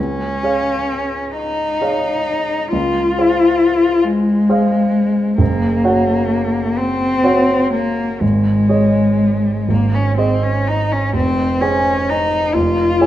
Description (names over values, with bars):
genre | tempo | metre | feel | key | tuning
classical, romantic duo for cello and grand piano | 40-46 BPM (dotted quarters) | 6/8 | rubato | unclear | A4 = 438 Hz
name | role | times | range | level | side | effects
rich cello | melody | 0.0-13.1 s | Ab3 to F4 | -16 LUFS | left 2 dB | none
warm baby grand piano | accompaniment | 0.0-13.1 s | F1 to Ab5 | -18 LUFS | right 2 dB | none
room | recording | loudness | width
wet recital hall reverb, RT60 1.4 s | minimal, uncompressed stereo recording | -14 LUFS | side -13 dB against mid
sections
0.0-13.1 A section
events
none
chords
0.0 Db; 2.7 Fm/Db; 5.4 Gb; 8.2 Absus4; 9.7 Ab; 11.1 Fm; 12.5 N.C.